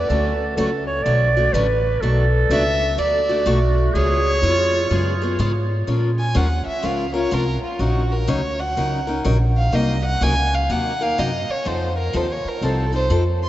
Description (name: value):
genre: acoustic string swing (jazz manouche)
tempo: 124 BPM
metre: 4/4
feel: swing 64% on 8ths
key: Bb minor from 5.9 s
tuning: A4 = 440 Hz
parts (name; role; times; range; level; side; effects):
- warm violin; melody; 0.0-13.5 s; F4 to C6; -23 LUFS; right 1 dB; none
- growling clarinet; second line; 0.0-5.7 s; E#4 to D5; -23 LUFS; right 2 dB; none
- upright bass; bass; 0.0-13.5 s; A1 to Bb2; -21 LUFS; equal; none
- picked steel-string acoustic guitar; accompaniment; 0.1-13.2 s; B2 to Bb4; -25 LUFS; left 2 dB; none
room: wet cathedral reverb, RT60 6.1 s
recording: in a vast, echoing space, nothing above 7.8 kHz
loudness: -17 LUFS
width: side -14 dB against mid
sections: 0.0-5.9 A section; 5.9-13.5 B section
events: violin solo 5.9-13.5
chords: 0.1 Dmaj7; 2.0 Bm7; 3.9 C#7; 5.9 Bbm7; 7.8 Ebm7/Bb; 9.7 Cm7b5; 11.7 F7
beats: | 0.09 0.57 1.05 1.53 | 2.02 2.50 2.98 3.46 | 3.94 4.42 4.91 5.39 | 5.87 6.35 6.84 7.32 | 7.80 8.28 8.77 9.25 | 9.73 10.21 10.70 11.18 | 11.66 12.14 12.62 13.11